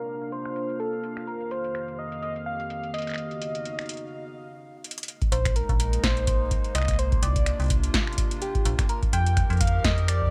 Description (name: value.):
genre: IDM.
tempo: 126 BPM.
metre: 4/4.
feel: swing 56% on 16ths.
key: unclear.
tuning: A4 = 440 Hz.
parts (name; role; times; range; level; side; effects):
soft struck synth lead; melody; 0.0-10.3 s; G4 to G5; -34 LUFS; equal; chorus, delay.
warbly tape-like pad; sustained chords; 0.0-10.3 s; F2 to Bb4; -38 LUFS; equal; chorus, built-in reverb, vintage 12-bit sampler grit.
bubbling stepped-filter texture; texture; 0.0-4.1 s; F5; -47 LUFS; equal; chorus, built-in reverb, sidechain pumping.
electro analog drum machine; drums; 0.2-10.2 s; finger snaps, hi-hat, snare drum; -32 LUFS; equal; low-pass filter on hats, low-pass filter on snare.
electronic kick drum; drums; 5.2-10.3 s; none; -28 LUFS; equal; none.
metallic FM bass; bass; 5.3-10.3 s; G1 to F2; -27 LUFS; equal; none.
room: little or no reverb.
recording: low-pass filter.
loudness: -26 LUFS.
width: mono.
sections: 0.0-5.1 A section; 5.1-10.3 B section.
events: filter sweep on drum 0.0-5.1; filter sweep on ambient pad 0.0-5.1; filter sweep 0.0-5.1; break 4.1-5.1; drum fill 4.8.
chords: 0.0 C9sus4; 1.3 F9sus4; 3.2 Db9sus4; 5.1 Bb9sus4; 7.0 C9sus4; 8.9 F9sus4.